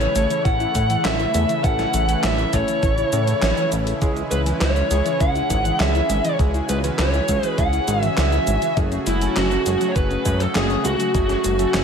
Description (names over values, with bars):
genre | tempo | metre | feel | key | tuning
synthwave | 101 BPM | 4/4 | straight | F# minor | A4 = 440 Hz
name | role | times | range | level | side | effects
bluesy overdriven lead guitar | melody | 0.0-11.8 s | E4 to F#5 | -22 LUFS | right 1 dB | distortion, ping-pong delay
soft supersaw | sustained chords | 0.0-11.8 s | C#3 to G#5 | -28 LUFS | equal | sidechain pumping
soft round pluck | arpeggios | 0.0-11.8 s | E3 to C#5 | -29 LUFS | left 4 dB | chorus, ping-pong delay
chorused polysynth | stabs | 0.0-11.8 s | G#3 to B4 | -29 LUFS | right 2 dB | none
chorused synth bass | bass | 0.0-11.8 s | F#1 to A2 | -22 LUFS | equal | none
gated 80s digital drum machine | drums | 0.0-11.8 s | cabasa, handclaps, hi-hat, snare drum | -26 LUFS | equal | gated reverb, gated reverb snare, overdrive
electronic kick drum | drums | 0.5-11.3 s | none | -23 LUFS | equal | overdrive
room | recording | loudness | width
light reverb, digital ambience | none | -17 LUFS | side -6 dB against mid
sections
0.0-11.8 A section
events
none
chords
0.0 A; 4.0 C#m; 8.8 F#madd9